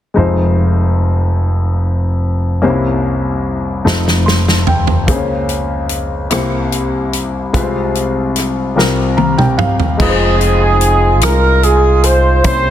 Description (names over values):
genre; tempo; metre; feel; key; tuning
slow gospel; 49 BPM (dotted quarters); 6/8; straight; F minor; A4 = 440 Hz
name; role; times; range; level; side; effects
clear concert grand piano; accompaniment; 0.1-12.7 s; F1 to C6; -14 LUFS; left 1 dB; none
natural country drum kit; drums; 3.9-12.6 s; crash cymbal, hi-hat, kick drum, rim click, snare drum, toms; -16 LUFS; equal; none
warm horn section; melody; 10.0-12.7 s; C4 to C5; -12 LUFS; right 1 dB; slapback echo
clear French horn section; sustained chords; 10.0-12.7 s; Ab3 to F4; -21 LUFS; equal; none
fingered electric bass; bass; 10.0-12.7 s; F1 to C2; -13 LUFS; right 1 dB; none
room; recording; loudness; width
light reverb; dense, heavily limited modern master; -11 LUFS; side -11 dB against mid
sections
0.2-10.0 A section; 10.0-12.7 B section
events
drum fill 3.9-5.1, 8.8-10.0; grand piano fill 3.9-5.1, 8.8-10.0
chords
0.2 Fm7; 2.6 C7b9; 3.9 F7; 5.1 Bbm9/Db; 6.3 C7; 7.5 Fm/C; 8.8 C7sus4; 10.0 Fm7